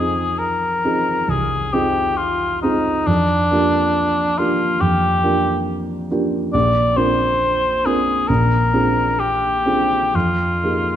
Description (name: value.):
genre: classical, impressionist duo for cor anglais and grand piano.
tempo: 59-71 BPM.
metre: 4/4.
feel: rubato.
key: F dorian.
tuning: A4 = 440 Hz.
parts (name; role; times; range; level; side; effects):
mellow cor anglais; melody; 0.0-11.0 s; D4 to D5; -18 LUFS; left 1 dB; none.
warm grand piano; accompaniment; 0.0-11.0 s; Bb1 to Bb4; -19 LUFS; right 1 dB; none.
room: wet recital hall reverb, RT60 1.5 s.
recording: none.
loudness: -16 LUFS.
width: side -10 dB against mid.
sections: 0.0-11.0 A section.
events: none.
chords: 0.0 Fm7; 3.1 Gm7/F; 6.5 Bbadd9; 8.3 Bb9; 10.1 Fm11.